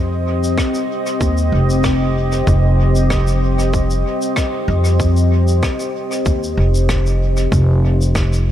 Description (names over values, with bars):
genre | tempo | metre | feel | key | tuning
ambient dub | 95 BPM | 4/4 | swing 54% on 16ths | unclear | A4 = 442 Hz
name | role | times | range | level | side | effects
deep dark ambient pad | sustained chords | 0.0-8.5 s | C4 to G5 | -20 LUFS | left 1 dB | chorus, built-in reverb
upright bass | bass | 0.0-8.5 s | F1 to F2 | -15 LUFS | equal | tube saturation
shaker and rim click | drums | 0.4-8.4 s | none | -28 LUFS | left 1 dB | dub echo
electronic kick drum | drums | 0.6-8.3 s | none | -21 LUFS | equal | overdrive
room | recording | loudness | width
light reverb, small room ambience | none | -14 LUFS | side -11 dB against mid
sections
0.0-8.5 A section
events
none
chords
0.0 Cm/F